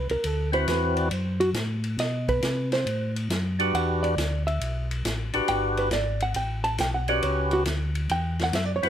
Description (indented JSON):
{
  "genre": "soul jazz organ trio",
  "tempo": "138 BPM",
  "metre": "4/4",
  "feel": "swing 68% on 8ths",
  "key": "unclear",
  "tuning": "A4 = 441 Hz",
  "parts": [
    { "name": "hollow-body jazz guitar", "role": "accompaniment", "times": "0.0-8.9 s", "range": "F#4 to A5", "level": "-28 LUFS", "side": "right 2 dB", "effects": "none" },
    { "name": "mellow tonewheel organ", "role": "bass", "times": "0.0-8.9 s", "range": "G1 to C3", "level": "-28 LUFS", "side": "left 1 dB", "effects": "slow rotary speaker" },
    { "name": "vintage drum kit", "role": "drums", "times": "0.1-8.9 s", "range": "hi-hat, kick drum, ride cymbal, snare drum", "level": "-32 LUFS", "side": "left 1 dB", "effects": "none" },
    { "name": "percussive tonewheel organ", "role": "melody", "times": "0.5-8.9 s", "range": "C4 to B4", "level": "-25 LUFS", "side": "left 1 dB", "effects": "slow rotary speaker, overdrive" }
  ],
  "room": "little or no reverb",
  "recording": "close, detailed microphones",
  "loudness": "-23 LUFS",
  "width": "side -10 dB against mid",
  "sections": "0.0-8.9 A section",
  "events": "hollow-body jazz guitar solo 0.0-8.9",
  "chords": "0.2 D13; 2.0 B5; 3.7 Em7; 7.2 Em13/C#"
}